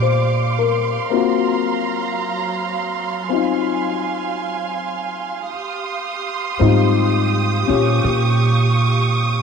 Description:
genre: jazz ballad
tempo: 55 BPM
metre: 4/4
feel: swing 66% on 8ths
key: unclear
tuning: A4 = 440 Hz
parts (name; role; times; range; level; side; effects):
- dark upright piano; accompaniment; 0.0-9.4 s; G3 to D5; -20 LUFS; left 10 dB; none
- warm symphonic string section; sustained chords; 0.0-9.4 s; Gb3 to Eb6; -22 LUFS; right 4 dB; none
- upright bass; bass; 0.0-9.4 s; Ab2 to Bb2; -17 LUFS; right 3 dB; none
room: moderate plate reverb, RT60 3.1 s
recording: none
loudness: -17 LUFS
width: side -6 dB against mid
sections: 0.0-9.4 A section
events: upright bass solo 0.0-9.4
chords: 0.0 Bb6; 1.1 Ab13; 5.5 Dbmaj9#11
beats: 0.01 | 1.10 2.20 3.30 4.39 | 5.49 6.58 7.67 8.77

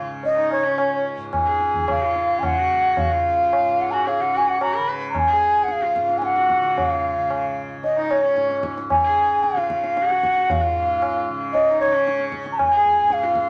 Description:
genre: indian classical, Hindustani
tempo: 112 BPM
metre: 7/4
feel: straight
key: Db raga khamaj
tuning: A4 = 440 Hz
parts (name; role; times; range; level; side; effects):
- clear sarangi; second line; 0.0-13.5 s; Db4 to Cb5; -32 LUFS; equal; none
- tanpura; drone; 0.0-13.5 s; Db2 to Db3; -33 LUFS; equal; none
- tabla; percussion; 0.2-13.5 s; none; -31 LUFS; equal; none
- reedy bansuri; melody; 0.3-13.5 s; Db5 to Cb6; -21 LUFS; equal; none
room: wet studio reverb, RT60 0.7 s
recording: none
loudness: -20 LUFS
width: mono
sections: 0.0-13.5 A section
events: speeding up 0.0-13.5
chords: none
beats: 0.24 0.79 1.34 1.89 2.44 | 2.98 3.52 4.07 4.61 5.15 5.69 6.23 | 6.77 7.30 7.84 8.37 8.90 9.44 9.97 | 10.49 11.02 11.55 12.07 12.60 13.12

